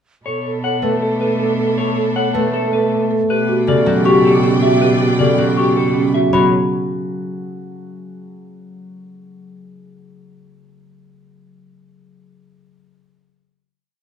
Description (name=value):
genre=classical, minimalist pattern music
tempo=158 BPM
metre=4/4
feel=straight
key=B minor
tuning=A4 = 440 Hz
part: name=clean electric guitar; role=melody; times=0.3-6.5 s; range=G4 to F#5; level=-21 LUFS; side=left 5 dB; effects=none
part: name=mellow hollow alto flute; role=second line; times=0.3-6.1 s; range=G4 to A4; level=-22 LUFS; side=right 3 dB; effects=none
part: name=clear studio string section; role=sustained chords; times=0.3-6.1 s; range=D4 to G5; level=-28 LUFS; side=equal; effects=none
part: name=rich cello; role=bass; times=0.3-6.5 s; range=B2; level=-22 LUFS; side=right 3 dB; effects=none
part: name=marimba with soft mallets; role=arpeggios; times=0.6-6.5 s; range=C#4 to C#5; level=-19 LUFS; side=right 3 dB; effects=none
part: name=concert harp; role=accompaniment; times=0.8-6.5 s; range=C#3 to A3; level=-21 LUFS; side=left 3 dB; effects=none
part: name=xylophone with soft rubber mallets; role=arpeggios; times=4.1-6.5 s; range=B5 to C#6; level=-22 LUFS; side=left 4 dB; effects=none
room=wet stone room reverb, RT60 0.9 s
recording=dark, warm production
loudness=-14 LUFS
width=side -8 dB against mid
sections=0.3-6.3 A section; 6.3-7.9 final chord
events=none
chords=0.3 Bm7; 3.3 Em11/B (rootless); 6.3 B5